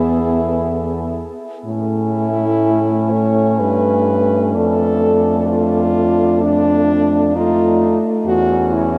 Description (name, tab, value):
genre	classical, lyrical piece for horn quartet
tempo	60-67 BPM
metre	3/4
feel	rubato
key	A major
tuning	A4 = 440 Hz
part	mellow French horn	melody	0.0-9.0 s	D4 to C#5	-20 LUFS	equal	none
part	clear French horn	second line	0.0-9.0 s	C#4 to E4	-24 LUFS	equal	none
part	dark French horn	accompaniment	0.0-8.9 s	A3 to B3	-22 LUFS	equal	none
part	mellow French horn	bass	0.0-9.0 s	E2 to A2	-23 LUFS	equal	none
room	moderate huge ambient reverb, RT60 7.7 s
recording	in a vast, echoing space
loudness	-16 LUFS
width	mono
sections	0.0-9.0 A section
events	none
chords	0.0 E; 1.7 A; 3.6 A7/G; 4.5 Dm/F; 8.3 A/E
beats	0.67 | 1.66 2.63 3.60 | 4.55 5.49 6.43 | 7.35 8.26